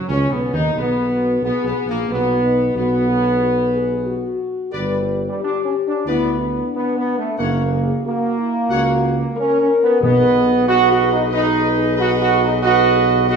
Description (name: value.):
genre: classical, ceremonial fanfare.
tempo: 91 BPM.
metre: 4/4.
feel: straight.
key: B major.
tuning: A4 = 440 Hz.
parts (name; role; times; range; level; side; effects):
bright trumpet section; melody; 0.0-13.4 s; A#3 to F#5; -26 LUFS; left 2 dB; none.
warm trombone section; sustained chords; 0.0-13.4 s; G3 to F#4; -18 LUFS; right 2 dB; none.
mellow tuba; bass; 0.1-13.4 s; F#1 to D#2; -22 LUFS; right 2 dB; none.
mellow French horn section; sustained chords; 0.8-13.4 s; D4 to B4; -23 LUFS; left 4 dB; none.
timpani; percussion; 10.0-11.0 s; B2; -24 LUFS; left 2 dB; none.
room: wet stone room reverb, RT60 1.4 s.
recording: none.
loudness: -15 LUFS.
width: side -6 dB against mid.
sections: 0.0-13.4 A section.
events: none.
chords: 0.0 B; 4.7 G; 7.4 F#; 10.0 B.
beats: 0.10 0.76 1.42 | 2.09 2.76 3.42 4.08 | 4.74 5.41 6.07 6.73 | 7.39 8.05 8.71 9.36 | 10.02 10.67 11.32 11.98 | 12.63 13.29.